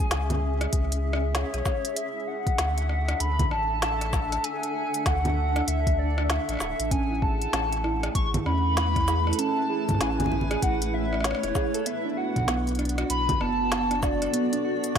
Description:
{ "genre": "IDM", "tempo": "97 BPM", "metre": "4/4", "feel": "swing 62% on 16ths", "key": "unclear", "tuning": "A4 = 438 Hz", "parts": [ { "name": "warbly nostalgic lead", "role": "melody", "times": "0.0-15.0 s", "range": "C#5 to C#6", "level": "-29 LUFS", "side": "equal", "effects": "wide subtle chorus, cassette tape, digital delay" }, { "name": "granular cloud pad", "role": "sustained chords", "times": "0.0-15.0 s", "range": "A3 to F#5", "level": "-32 LUFS", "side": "equal", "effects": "built-in reverb" }, { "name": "warm sub bass", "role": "bass", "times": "0.1-15.0 s", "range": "D1 to E2", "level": "-28 LUFS", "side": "equal", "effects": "none" }, { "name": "organic electronic drum kit", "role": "drums", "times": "0.1-15.0 s", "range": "congas, hi-hat, rim click, shaker, snare drum", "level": "-30 LUFS", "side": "equal", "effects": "overdrive" }, { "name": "electronic kick drum", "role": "drums", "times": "0.7-15.0 s", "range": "none", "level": "-27 LUFS", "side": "equal", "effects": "overdrive" }, { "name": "harp-like synth pluck", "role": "arpeggios", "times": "6.9-15.0 s", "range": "B3 to A4", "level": "-30 LUFS", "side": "right 4 dB", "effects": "chorus, cassette tape, tape echo" } ], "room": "light reverb", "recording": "none", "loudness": "-23 LUFS", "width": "side -8 dB against mid", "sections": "0.0-15.0 A section", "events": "none", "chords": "0.0 C#m; 2.0 Dadd9; 6.9 Amaj7; 11.9 Bm7", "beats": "0.11 0.73 1.35 | 1.97 2.58 3.20 3.82 | 4.44 5.06 5.68 6.30 | 6.91 7.53 8.15 8.77 | 9.39 10.01 10.63 11.24 | 11.86 12.48 13.10 13.72 | 14.34 14.96" }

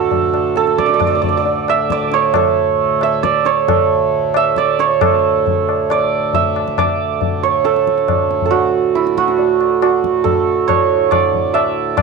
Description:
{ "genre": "indian classical, Hindustani", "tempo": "137 BPM", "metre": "4/4", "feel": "straight", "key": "D raga hamsadhwani", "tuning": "A4 = 438 Hz", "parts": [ { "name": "santur", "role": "melody", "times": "0.0-12.0 s", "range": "E4 to E5", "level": "-14 LUFS", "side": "right 9 dB", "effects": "none" }, { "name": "hand-pumped harmonium", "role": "drone", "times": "0.0-12.0 s", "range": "D2 to A2", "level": "-24 LUFS", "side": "left 5 dB", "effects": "none" }, { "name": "tabla", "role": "percussion", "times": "0.1-12.0 s", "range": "none", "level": "-21 LUFS", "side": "left 10 dB", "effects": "none" } ], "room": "moderate spring reverb, RT60 1.1 s, small room reverb", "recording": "1960s-style stereo with parts hard left and right", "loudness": "-13 LUFS", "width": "side -4 dB against mid", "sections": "0.0-5.0 A section; 5.0-12.0 B section", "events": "speeding up 0.0-12.0", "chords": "none", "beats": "0.12 0.57 1.02 | 1.47 1.91 2.36 2.80 | 3.25 3.69 4.13 4.58 | 5.02 5.46 5.90 6.33 | 6.77 7.21 7.65 8.08 | 8.52 8.95 9.39 9.82 | 10.25 10.68 11.11 11.54 | 11.97" }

